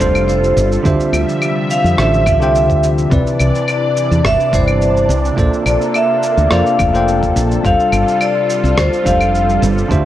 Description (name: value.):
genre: sunset chillout.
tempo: 106 BPM.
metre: 4/4.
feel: straight.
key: unclear.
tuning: A4 = 440 Hz.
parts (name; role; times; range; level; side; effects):
vibraphone with hard mallets; melody; 0.0-9.6 s; C5 to F5; -16 LUFS; left 1 dB; tape echo.
bell-like tine electric piano; accompaniment; 0.0-10.1 s; C3 to G5; -18 LUFS; moving between left 3 dB and right 4 dB; auto-pan, digital delay.
lush unison pad; sustained chords; 0.0-10.1 s; C3 to E5; -21 LUFS; equal; chorus, phaser.
woody fretless electric bass; bass; 0.0-10.0 s; F1 to F2; -16 LUFS; equal; none.
electronic cabasa, claves and rim click; drums; 0.0-10.0 s; none; -22 LUFS; left 1 dB; none.
electronic kick drum; drums; 0.0-10.0 s; none; -18 LUFS; equal; none.
room: moderate plate reverb, RT60 1.5 s.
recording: worn, warbling old tape, cassette tape, warbly pitch drift.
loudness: -11 LUFS.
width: side -12 dB against mid.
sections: 0.0-10.1 A section.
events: none.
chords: 0.0 G9sus4; 0.9 Dm11; 3.1 Cmaj9; 5.4 Bbmaj9; 7.6 G9sus4.